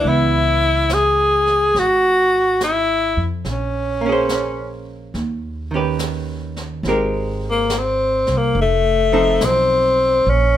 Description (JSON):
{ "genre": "jazz ballad", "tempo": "70 BPM", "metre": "4/4", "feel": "swing 68% on 8ths", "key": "unclear", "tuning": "A4 = 440 Hz", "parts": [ { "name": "clear tenor saxophone", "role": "melody", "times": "0.0-10.6 s", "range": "A3 to Ab4", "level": "-16 LUFS", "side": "left 2 dB", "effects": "none" }, { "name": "archtop guitar, miked and amplified", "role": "accompaniment", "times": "0.0-10.3 s", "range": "Eb3 to C5", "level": "-22 LUFS", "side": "right 3 dB", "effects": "none" }, { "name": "upright bass", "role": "bass", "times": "0.0-10.6 s", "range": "F1 to F2", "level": "-23 LUFS", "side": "right 1 dB", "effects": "none" }, { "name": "jazz brush drum kit", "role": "drums", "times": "0.0-10.6 s", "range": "brushed snare drum, hi-hat, snare drum", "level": "-30 LUFS", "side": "right 1 dB", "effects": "none" } ], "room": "light reverb", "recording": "minimal, uncompressed stereo recording", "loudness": "-15 LUFS", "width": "side -11 dB against mid", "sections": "0.0-10.6 A section", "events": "none", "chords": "0.0 Dbm7; 3.5 Bbm9; 5.2 Ebaug7; 6.9 Abmaj9; 8.6 F7", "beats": "| 0.04 0.89 1.75 2.60 | 3.45 4.30 5.16 6.01 | 6.86 7.71 8.56 9.41 | 10.26" }